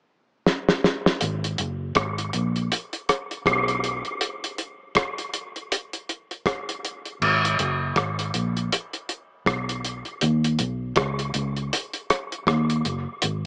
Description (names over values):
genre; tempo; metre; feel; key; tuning
dub reggae; 80 BPM; 4/4; swing 59% on 16ths; G# minor; A4 = 441 Hz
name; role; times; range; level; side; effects
cloth-damped thuddy drum kit; drums; 0.5-13.4 s; crash cymbal, hi-hat, kick drum, rim click, snare drum; -23 LUFS; equal; none
vintage muted fingered electric bass; bass; 1.2-13.5 s; F#1 to D#2; -25 LUFS; equal; none
room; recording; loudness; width
wet spring reverb, RT60 2.7 s; small speaker sound; -22 LUFS; side -32 dB against mid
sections
0.0-1.2 A section; 1.2-7.2 B section; 7.2-13.5 C section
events
drum fill 0.5-1.2; break 4.2-7.2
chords
none